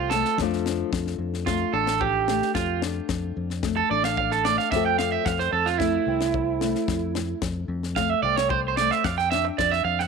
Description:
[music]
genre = highlife guitar band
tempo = 111 BPM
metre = 4/4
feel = straight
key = unclear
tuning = A4 = 441 Hz
[part]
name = flamenco guitar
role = accompaniment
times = 0.0-10.1 s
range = F2 to A4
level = -29 LUFS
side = left 15 dB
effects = none
[part]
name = electric guitar at the edge of break-up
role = arpeggios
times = 0.0-10.1 s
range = E4 to G5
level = -23 LUFS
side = right 10 dB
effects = tape echo
[part]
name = fingered electric bass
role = bass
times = 0.0-10.1 s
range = A1 to F2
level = -30 LUFS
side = left 2 dB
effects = none
[part]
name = tight funk drum kit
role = drums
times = 0.1-10.1 s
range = kick drum, snare drum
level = -32 LUFS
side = left 6 dB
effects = none
[sound]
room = light reverb, small room ambience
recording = 1960s-style stereo with parts hard left and right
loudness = -22 LUFS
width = side -5 dB against mid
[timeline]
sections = 0.0-10.1 A section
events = clean electric guitar solo 0.0-10.1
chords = 0.4 Dm; 4.7 F; 9.0 Dm/F

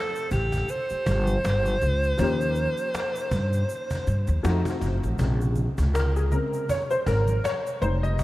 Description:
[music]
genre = hip hop, jazz-hop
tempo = 80 BPM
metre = 4/4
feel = swing 57% on 16ths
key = Bb dorian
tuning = A4 = 441 Hz
[part]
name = breathy alto saxophone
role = melody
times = 0.0-4.4 s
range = G4 to C5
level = -28 LUFS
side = equal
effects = diffuse ambient delay
[part]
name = dark grand piano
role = accompaniment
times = 0.0-8.2 s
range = C3 to Eb5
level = -28 LUFS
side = left 1 dB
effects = ensemble chorus
[part]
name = cajon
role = drums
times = 0.2-8.2 s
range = none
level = -34 LUFS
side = equal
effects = none
[part]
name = tube shaker and congas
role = percussion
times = 0.2-8.2 s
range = none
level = -38 LUFS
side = right 2 dB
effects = none
[part]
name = upright bass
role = bass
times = 0.3-8.2 s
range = F1 to G2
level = -24 LUFS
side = equal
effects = none
[sound]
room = light reverb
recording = vinyl crackle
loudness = -22 LUFS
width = side -16 dB against mid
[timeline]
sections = 0.0-5.2 A section; 5.2-8.2 B section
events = grand piano solo 5.2-8.2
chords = 0.0 F9; 2.2 Eb7; 4.4 F7b9; 5.2 Bbm9

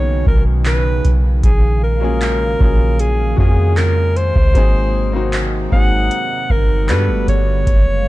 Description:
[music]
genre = contemporary R&B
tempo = 77 BPM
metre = 4/4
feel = straight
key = F# major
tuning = A4 = 440 Hz
[part]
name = breathy alto saxophone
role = melody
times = 0.0-8.1 s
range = G#4 to F#5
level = -21 LUFS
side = equal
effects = ping-pong delay
[part]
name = clear grand piano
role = accompaniment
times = 0.0-7.7 s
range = D#3 to A4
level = -24 LUFS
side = left 4 dB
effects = none
[part]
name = hollow soft pad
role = sustained chords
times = 0.0-8.1 s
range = B2 to E#5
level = -25 LUFS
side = right 2 dB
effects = chorus
[part]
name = soft 808-style bass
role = bass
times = 0.0-8.1 s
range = F#1 to G2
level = -16 LUFS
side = equal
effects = none
[part]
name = booming analog drum machine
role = drums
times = 0.3-7.9 s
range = handclaps, hi-hat, kick drum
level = -15 LUFS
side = equal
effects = overdrive
[sound]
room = little or no reverb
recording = dark, warm production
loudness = -13 LUFS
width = side -17 dB against mid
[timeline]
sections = 0.0-8.1 A section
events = none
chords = 0.0 Bmaj9; 1.4 F#maj9/A#; 4.6 G#9; 6.9 Gmaj9

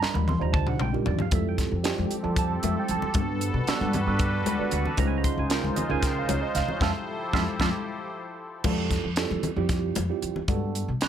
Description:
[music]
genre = electric jazz fusion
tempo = 230 BPM (eighths)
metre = 7/8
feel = straight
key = unclear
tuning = A4 = 439 Hz
[part]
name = tine electric piano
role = accompaniment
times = 0.0-11.1 s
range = G3 to C6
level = -30 LUFS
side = right 12 dB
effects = overdrive, phaser
[part]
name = upright bass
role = bass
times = 0.0-11.1 s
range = Bb1 to B2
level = -29 LUFS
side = left 1 dB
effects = none
[part]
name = crisp fusion drum kit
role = drums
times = 0.0-11.1 s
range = crash cymbal, hi-hat, kick drum, snare drum, toms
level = -28 LUFS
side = left 1 dB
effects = none
[part]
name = congas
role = percussion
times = 0.0-10.6 s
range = none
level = -33 LUFS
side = left 7 dB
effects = none
[part]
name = sweeping resonant pad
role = sustained chords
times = 1.3-8.6 s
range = Db3 to C5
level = -32 LUFS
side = left 2 dB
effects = chorus
[sound]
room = light reverb, studio reverb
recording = none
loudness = -24 LUFS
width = side -9 dB against mid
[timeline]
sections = 0.0-8.7 A section; 8.7-11.1 B section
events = drum fill 0.0-1.3, 7.1-8.7; band accent 6.8-8.7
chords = 0.0 Ebmaj9; 1.3 Fmaj9; 3.2 Gmaj9; 5.0 Dbmaj9; 6.8 Fmaj9; 10.5 Gmaj9

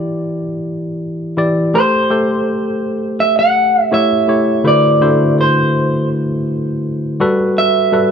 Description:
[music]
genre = soul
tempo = 82 BPM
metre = 4/4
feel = straight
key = A dorian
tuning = A4 = 440 Hz
[part]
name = electric guitar through a small old amp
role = melody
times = 0.0-8.1 s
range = C5 to F#5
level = -14 LUFS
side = right 2 dB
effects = none
[part]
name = barky tine electric piano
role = accompaniment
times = 0.0-8.1 s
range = D3 to D5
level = -15 LUFS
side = left 1 dB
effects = none
[sound]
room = light reverb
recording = none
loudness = -12 LUFS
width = side -7 dB against mid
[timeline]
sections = 0.0-8.1 A section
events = none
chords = 0.0 Em7; 1.7 Am7; 3.9 A7; 4.7 D13; 7.2 Gmaj9

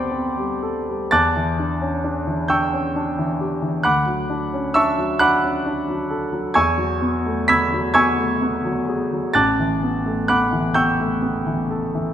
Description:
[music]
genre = classical, impressionist solo piano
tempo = 44 BPM (dotted quarters)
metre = 6/8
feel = uneven beats, rubato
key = unclear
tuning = A4 = 440 Hz
[part]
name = warm grand piano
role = solo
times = 0.0-12.1 s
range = A1 to B6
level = -18 LUFS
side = equal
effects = none
[sound]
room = moderate concert hall reverb, RT60 1.8 s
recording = none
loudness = -18 LUFS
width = side -10 dB against mid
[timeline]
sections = 0.0-12.1 A section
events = none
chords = 0.0 Csus2/D; 1.1 Em7; 3.8 Dadd9; 6.5 Eadd9; 9.4 A11

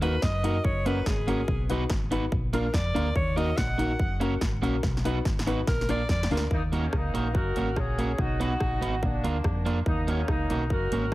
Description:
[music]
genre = ska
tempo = 143 BPM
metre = 4/4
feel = straight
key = Eb minor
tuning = A4 = 442 Hz
[part]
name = edgy alto saxophone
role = melody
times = 0.0-6.3 s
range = Ab4 to Gb5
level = -33 LUFS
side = equal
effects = tape echo
[part]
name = electric guitar at the edge of break-up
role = accompaniment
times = 0.0-11.1 s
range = Bb3 to B4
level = -32 LUFS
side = right 3 dB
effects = none
[part]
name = dark upright piano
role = stabs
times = 0.0-6.4 s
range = Db4 to B4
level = -33 LUFS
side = left 4 dB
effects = none
[part]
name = fingered electric bass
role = bass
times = 0.0-11.1 s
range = Gb1 to Gb2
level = -29 LUFS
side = equal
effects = none
[part]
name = big-room dance drum kit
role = drums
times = 0.0-11.1 s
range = hi-hat, kick drum, rim click, snare drum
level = -29 LUFS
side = equal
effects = none
[part]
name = mellow horn section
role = melody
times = 6.5-11.1 s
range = Bb3 to Bb4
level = -31 LUFS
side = equal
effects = tape echo
[sound]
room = studio ambience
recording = heavily compressed radio sound, multiband compression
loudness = -24 LUFS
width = side -17 dB against mid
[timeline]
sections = 0.0-6.5 A section; 6.5-11.1 B section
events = alto saxophone solo 0.0-6.5; drum fill 4.8-6.5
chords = 0.0 Ebm; 0.6 Gb; 1.5 B; 2.3 Bb; 3.2 Ebm; 4.0 Gb; 4.8 B; 5.7 Bb; 6.5 Ebm; 7.3 Gb; 8.2 B; 9.0 Bb; 9.9 Ebm

